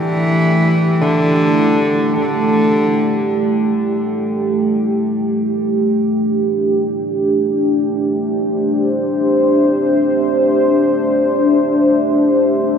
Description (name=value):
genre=dark ambient drone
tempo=free time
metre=none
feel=none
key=unclear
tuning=A4 = 439 Hz
part: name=clear cello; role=melody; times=0.0-3.4 s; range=D3 to E3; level=-16 LUFS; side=equal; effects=diffuse ambient delay
part: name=deep dark ambient pad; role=sustained chords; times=0.0-12.8 s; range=A3 to G5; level=-14 LUFS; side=equal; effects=chorus, built-in reverb
room=wet cathedral reverb, RT60 5.7 s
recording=none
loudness=-13 LUFS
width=side -7 dB against mid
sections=0.0-4.6 A section; 4.6-12.8 B section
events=none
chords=0.0 Gsus2; 4.6 Am